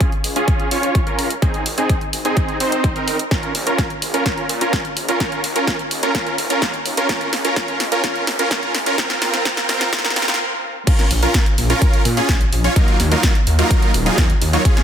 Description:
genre	EDM, festival progressive house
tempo	127 BPM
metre	4/4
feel	straight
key	Bb minor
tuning	A4 = 441 Hz
part	supersaw chords	riff	0.0-14.8 s	Gb3 to Db5	-19 LUFS	right 1 dB	sidechain pumping, low-pass filter, tape echo
part	big-room dance drum kit	drums	0.0-14.8 s	crash cymbal, hi-hat, snare drum	-22 LUFS	equal	studio ambience
part	electronic kick drum	drums	0.0-14.7 s	none	-18 LUFS	equal	studio ambience
part	wide detuned saw bass	bass	0.2-14.6 s	Eb1 to Bb2	-22 LUFS	equal	chorus, sidechain pumping, high-pass filter
room	moderate lush hall reverb, RT60 2.1 s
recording	dense, heavily limited modern master, high-pass filter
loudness	-15 LUFS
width	side -8 dB against mid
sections	0.0-10.9 A section; 10.9-14.8 B section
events	build-up 0.0-10.9; filter sweep on supersaw synth 0.0-10.9; filter sweep 0.0-10.9; drum fill 3.3-10.4; stop 10.4-10.9; drop 10.9-14.8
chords	0.0 Db; 1.4 Ab; 3.3 Bbm; 5.2 Ebsus2; 7.1 Db; 9.0 Ab; 10.9 Bbm; 12.8 Ebmadd9

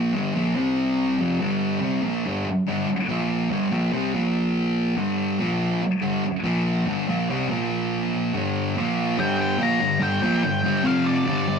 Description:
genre	rock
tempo	143 BPM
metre	4/4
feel	straight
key	G minor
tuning	A4 = 441 Hz
part	thick fuzz guitar	riff	0.0-11.6 s	F2 to C4	-21 LUFS	equal	distortion
part	octave-fuzz lead guitar	melody	9.2-11.6 s	D5 to Bb5	-25 LUFS	left 2 dB	distortion
room	wet small room ambience, RT60 0.5 s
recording	rough rehearsal-room recording, nothing above 10.3 kHz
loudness	-21 LUFS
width	side -6 dB against mid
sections	0.0-9.2 A section; 9.2-11.6 B section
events	none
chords	0.1 Gm; 0.6 C5; 1.2 Gm; 3.1 Bb5; 3.5 Gm; 4.1 Bb5; 5.0 G5; 5.4 Bb5; 6.0 G5; 6.4 Bb5; 6.9 Gm; 7.5 Bb5; 8.3 G5; 8.8 Bb5; 9.2 Gm; 10.8 F5

